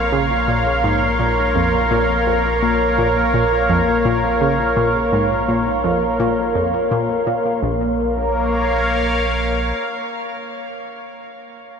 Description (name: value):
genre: ambient, sequencer-driven space music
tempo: 84 BPM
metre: 4/4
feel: straight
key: Bb minor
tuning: A4 = 439 Hz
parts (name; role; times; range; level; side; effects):
- sweeping resonant pad; sustained chords; 0.0-11.0 s; Bb3 to F5; -18 LUFS; equal; chorus
- round analog bass; bass; 0.0-9.7 s; Bb1; -25 LUFS; equal; none
- wind-like tuned noise texture; texture; 0.0-7.6 s; C6; -35 LUFS; right 2 dB; none
- analog pluck; riff; 0.1-8.0 s; Bb1 to Db3; -22 LUFS; left 1 dB; chorus, ping-pong delay
room: wet huge ambient reverb, RT60 8.1 s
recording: lossy compression artefacts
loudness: -16 LUFS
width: side -6 dB against mid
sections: 0.0-7.6 A section; 7.6-10.5 B section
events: none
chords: 0.0 Bbm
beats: 0.48 1.20 | 1.91 2.63 3.34 4.05 | 4.77 5.48 6.20 6.91 | 7.63 8.34 9.05 9.77